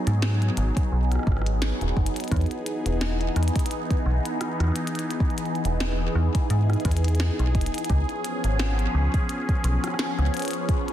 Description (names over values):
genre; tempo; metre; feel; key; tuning
IDM; 86 BPM; 4/4; swing 56% on 16ths; unclear; A4 = 440 Hz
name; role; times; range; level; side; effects
phased analog pad; sustained chords; 0.0-10.9 s; E3 to G#4; -28 LUFS; equal; phaser, chorus
metallic FM bass; bass; 0.1-10.3 s; D#1 to G#2; -23 LUFS; equal; none
glitchy drum kit; drums; 0.1-10.9 s; hi-hat, rim click, snare drum; -33 LUFS; equal; studio reverb, soft clipping on snare, digital delay
electronic kick drum; drums; 0.8-10.8 s; none; -24 LUFS; equal; studio reverb
room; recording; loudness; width
light reverb, digital ambience; dense, heavily limited modern master; -22 LUFS; side -12 dB against mid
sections
0.0-10.9 A section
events
none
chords
0.0 G#m7; 2.3 Emaj7; 7.9 C#7